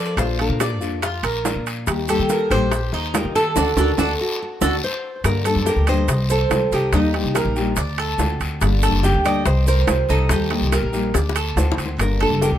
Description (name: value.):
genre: latin, Cuban son and guajira.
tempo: 142 BPM.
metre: 4/4.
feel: straight.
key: G harmonic minor from 5.2 s.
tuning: A4 = 440 Hz.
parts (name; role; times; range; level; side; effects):
nylon-string guitar; melody; 0.0-12.5 s; Eb4 to D5; -24 LUFS; equal; none.
nylon-string guitar; accompaniment; 0.0-12.6 s; D3 to A4; -26 LUFS; left 3 dB; none.
Cuban tres; arpeggios; 0.0-12.6 s; D4 to Eb5; -25 LUFS; right 3 dB; none.
upright bass; bass; 0.0-12.6 s; F#1 to F3; -21 LUFS; equal; none.
bongos; percussion; 0.2-12.6 s; none; -28 LUFS; left 5 dB; none.
guiro; percussion; 0.2-12.6 s; none; -32 LUFS; left 5 dB; none.
maracas; percussion; 0.2-12.6 s; none; -33 LUFS; right 6 dB; none.
timbales; percussion; 0.2-12.6 s; none; -26 LUFS; right 7 dB; none.
room: little or no reverb.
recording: close, detailed microphones.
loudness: -17 LUFS.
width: side -11 dB against mid.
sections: 0.0-5.2 A section; 5.2-12.6 B section.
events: band accent 3.6-5.2; drum fill 4.6-5.2, 11.1-12.0.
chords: 0.2 Bb; 1.9 Eb; 3.6 D; 5.2 Gmadd9; 6.1 Cm; 6.9 Eb; 7.8 D7; 8.6 Gmadd9; 9.5 Cm; 10.3 Eb; 11.1 D7; 12.0 Gmadd9.